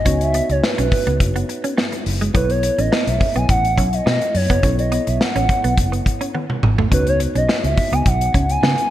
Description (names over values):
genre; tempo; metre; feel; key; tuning
early-eighties boogie funk; 105 BPM; 4/4; straight; C# minor; A4 = 440 Hz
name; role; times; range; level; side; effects
gliding portamento lead; melody; 0.0-8.9 s; B4 to G#5; -21 LUFS; right 1 dB; chorus, digital delay
tine electric piano; accompaniment; 0.0-8.9 s; B3 to C#5; -27 LUFS; left 1 dB; medium stereo tremolo
vintage muted fingered electric bass; bass; 0.0-8.7 s; F#1 to C#3; -20 LUFS; equal; none
clean electric guitar; riff; 0.1-8.7 s; G#3 to C#4; -26 LUFS; right 4 dB; analog chorus
modern studio drum kit; drums; 0.1-8.9 s; hi-hat, kick drum, snare drum, toms; -20 LUFS; equal; gated reverb
room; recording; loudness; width
light reverb, studio reverb; bright 1980s-style digital production; -15 LUFS; side -13 dB against mid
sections
0.0-8.9 A section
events
drum fill 6.3-6.9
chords
0.0 C#9sus4; 2.3 B9sus4; 6.9 C#9sus4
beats
| 0.06 0.63 1.20 1.77 | 2.35 2.92 3.49 4.06 | 4.63 5.20 5.77 6.34 | 6.92 7.49 8.06 8.63